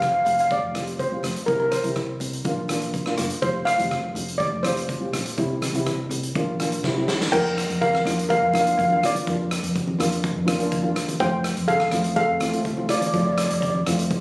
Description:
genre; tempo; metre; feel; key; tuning
calypso; 124 BPM; 4/4; straight; F major; A4 = 440 Hz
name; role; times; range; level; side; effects
steel pan; melody; 0.0-13.8 s; F4 to G5; -22 LUFS; equal; tape echo
steel pan; accompaniment; 0.0-14.2 s; G3 to F4; -28 LUFS; equal; none
hollow-body short-scale fingered electric bass; bass; 0.0-14.2 s; F1 to F2; -28 LUFS; equal; none
street-band drum kit; drums; 0.0-14.2 s; crash cymbal, hi-hat, kick drum, rim click, snare drum; -29 LUFS; equal; none
congas; percussion; 0.3-14.2 s; none; -31 LUFS; equal; none
room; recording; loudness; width
light reverb; recorded on a phone in the room, studio reverb, compression; -20 LUFS; side -23 dB against mid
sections
0.0-7.3 A section; 7.3-14.2 B section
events
drum fill 6.8-7.3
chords
0.0 Fsus2; 1.5 C; 2.5 Bb; 3.4 Fsus2; 5.4 C; 6.4 Bb; 6.8 C; 7.3 Bb/F; 11.2 F

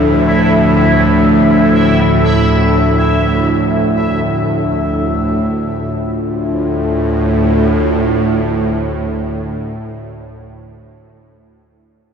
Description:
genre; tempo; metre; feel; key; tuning
dark ambient drone; free time; none; none; D minor; A4 = 440 Hz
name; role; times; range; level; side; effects
dark analog pad; sustained chords; 0.0-9.9 s; F3 to E5; -17 LUFS; left 2 dB; lush chorus
bowed-like drone; drone; 0.0-9.4 s; D2 to A2; -14 LUFS; right 2 dB; built-in reverb
bubbling stepped-filter texture; texture; 0.0-5.5 s; E4 to E5; -18 LUFS; left 1 dB; chorus, built-in reverb
room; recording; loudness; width
wet echo chamber reverb, RT60 2.3 s; none; -11 LUFS; side -6 dB against mid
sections
0.0-5.4 A section; 5.4-9.4 B section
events
none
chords
0.0 Dmadd9

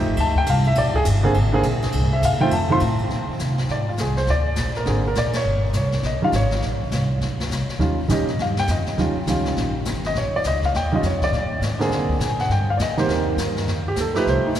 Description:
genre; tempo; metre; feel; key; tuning
jazz piano trio; 204 BPM; 4/4; swing 63% on 8ths; Bb mixolydian; A4 = 443 Hz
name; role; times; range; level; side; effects
warm concert grand piano; melody; 0.0-14.6 s; D3 to C6; -21 LUFS; right 1 dB; none
upright bass; bass; 0.0-14.6 s; G1 to C3; -22 LUFS; equal; none
jazz brush drum kit; drums; 0.2-14.6 s; brushed snare drum, hi-hat, kick drum, ride cymbal, snare drum; -29 LUFS; left 2 dB; none
room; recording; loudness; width
wet cathedral reverb, RT60 6.3 s; recorded in a church or concert hall; -19 LUFS; side -11 dB against mid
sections
0.0-3.1 A section; 3.1-14.6 B section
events
grand piano solo 0.0-3.1; band accent 5.3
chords
0.0 F9; 0.8 Bb7; 1.9 Cm; 2.5 F; 3.1 Bb9; 5.5 Eb7; 6.6 Bbadd9; 7.8 Eb9; 11.3 Bb9; 12.5 Cm7; 13.7 F9

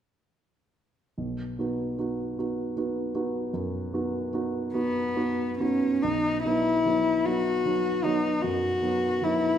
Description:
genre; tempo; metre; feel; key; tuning
classical, romantic duo for cello and grand piano; 44-52 BPM (dotted quarters); 12/8; rubato; B major; A4 = 435 Hz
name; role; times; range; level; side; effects
warm baby grand piano; accompaniment; 1.2-9.6 s; B1 to F#4; -28 LUFS; right 2 dB; none
warm cello; melody; 4.7-9.6 s; B3 to F#4; -25 LUFS; left 2 dB; none
room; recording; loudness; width
moderate scoring stage reverb, RT60 1.6 s; minimal, uncompressed stereo recording; -25 LUFS; side -9 dB against mid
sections
1.2-6.0 A section; 6.0-9.6 B section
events
none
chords
1.2 B

